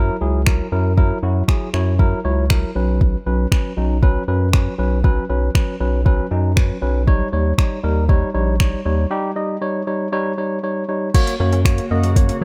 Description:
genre	dance-pop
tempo	118 BPM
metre	4/4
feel	straight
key	unclear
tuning	A4 = 436 Hz
part	tine electric piano	accompaniment	0.0-12.4 s	F#3 to D#5	-24 LUFS	equal	sidechain pumping
part	round analog bass	bass	0.0-12.4 s	A#1 to F#2	-21 LUFS	equal	sidechain pumping
part	smooth R&B drum kit	drums	0.5-12.4 s	crash cymbal, finger snaps, hi-hat, kick drum	-18 LUFS	equal	none
part	granular cloud pad	sustained chords	11.9-12.4 s	C#3 to F#4	-31 LUFS	equal	built-in reverb, sidechain pumping
part	unison pluck	arpeggios	11.1-12.4 s	F#3 to C#4	-32 LUFS	equal	none
room	digital ambience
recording	none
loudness	-18 LUFS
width	mono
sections	0.0-11.1 A section; 11.1-12.4 B section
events	break 9.1-11.1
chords	0.0 F#7; 2.8 Bsus2; 7.1 D#7; 11.1 F#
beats	0.47 | 0.98 1.48 1.99 2.50 | 3.01 3.52 4.03 4.54 | 5.04 5.55 6.06 6.57 | 7.08 7.59 8.10 8.60 | 9.11 9.62 10.13 10.64 | 11.14 11.65 12.16

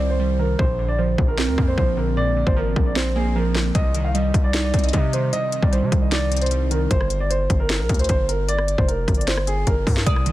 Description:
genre	hip hop, trap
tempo	152 BPM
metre	4/4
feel	half-time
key	unclear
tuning	A4 = 440 Hz
part	dark grand piano	melody	0.0-10.3 s	Ab4 to Eb6	-25 LUFS	right 1 dB	none
part	glassy digital keys	accompaniment	0.0-6.9, 10.1-10.3 s	Bb2 to C5	-25 LUFS	right 3 dB	chorus
part	distorted 808-style bass	bass	0.0-10.3 s	F1 to C3	-22 LUFS	equal	distortion
part	trap drum kit	drums	0.6-10.3 s	hi-hat, kick drum, rim click, snare drum	-22 LUFS	equal	vintage 12-bit sampler grit
part	glassy wavetable pluck	second line	10.1-10.3 s	D5	-30 LUFS	right 8 dB	chorus
room	little or no reverb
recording	dense, heavily limited modern master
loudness	-18 LUFS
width	side -15 dB against mid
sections	0.0-10.1 A section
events	break 0.0-3.8; drum fill 9.7-10.1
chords	0.0 Cm; 0.6 Bbadd9; 3.8 Cm; 6.9 Gm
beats	0.20 | 0.59 0.99 1.38 1.78 | 2.17 2.56 2.96 3.35 | 3.75 4.14 4.54 4.93 | 5.33 5.72 6.12 6.51 | 6.91 7.30 7.70 8.09 | 8.49 8.88 9.28 9.67 | 10.06

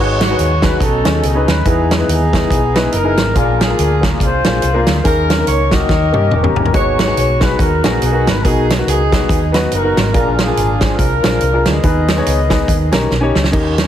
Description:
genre	uptempo gospel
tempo	141 BPM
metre	4/4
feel	swing 59% on 8ths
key	G# minor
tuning	A4 = 440 Hz
part	mellow horn section	melody	0.0-13.3 s	B3 to D#5	-18 LUFS	left 1 dB	tape echo
part	warm upright piano	accompaniment	0.0-13.9 s	G#2 to C#5	-18 LUFS	left 2 dB	none
part	hollow-body short-scale fingered electric bass	bass	0.0-13.9 s	E1 to G2	-17 LUFS	equal	none
part	natural country drum kit	drums	0.2-13.9 s	crash cymbal, hi-hat, kick drum, snare drum, toms	-16 LUFS	right 1 dB	none
room	light reverb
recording	heavily compressed radio sound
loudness	-11 LUFS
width	side -10 dB against mid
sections	0.0-13.5 A section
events	drum fill 5.9-6.7, 13.1-13.5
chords	0.0 G#m7; 0.8 B13; 1.7 Emaj7; 3.4 A#7; 5.0 D#7sus4; 5.9 D#7; 6.7 G#m7; 8.4 Bmaj7; 10.1 A#7; 11.8 G#m/D#; 12.7 D#7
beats	0.39 0.81 1.23 | 1.66 2.08 2.50 2.93 | 3.35 3.78 4.20 4.62 | 5.05 5.47 5.90 6.32 | 6.74 7.17 7.59 8.02 | 8.44 8.87 9.29 9.71 | 10.14 10.56 10.99 11.41 | 11.84 12.26 12.68 13.11 | 13.53

